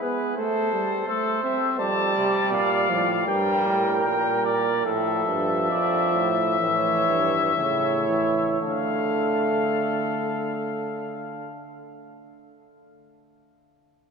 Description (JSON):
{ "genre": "classical, imitative canzona for brass ensemble", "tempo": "55-85 BPM", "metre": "4/4", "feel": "straight", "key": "D minor", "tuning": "A4 = 440 Hz", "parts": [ { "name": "warm trumpet", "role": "melody", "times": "0.0-11.6 s", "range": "A4 to A5", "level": "-26 LUFS", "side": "left 6 dB", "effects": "none" }, { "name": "mellow flugelhorn", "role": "second line", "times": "0.0-11.6 s", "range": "G#4 to D5", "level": "-28 LUFS", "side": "right 4 dB", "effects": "none" }, { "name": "warm trombone", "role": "accompaniment", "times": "0.0-11.6 s", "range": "C#3 to C4", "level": "-27 LUFS", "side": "right 3 dB", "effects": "none" }, { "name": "warm euphonium", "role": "bass", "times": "1.8-11.6 s", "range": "F2 to D3", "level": "-29 LUFS", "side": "right 1 dB", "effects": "none" } ], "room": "wet cathedral reverb, RT60 4.6 s", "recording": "minimal, uncompressed stereo recording", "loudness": "-21 LUFS", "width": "side -5 dB against mid", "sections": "0.0-8.6 A section; 8.6-13.0 B section", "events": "slowing down 0.4-8.6", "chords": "0.4 Am; 1.8 Dm/F; 3.3 Gmadd9; 4.8 Dm; 6.6 A; 8.6 Dm" }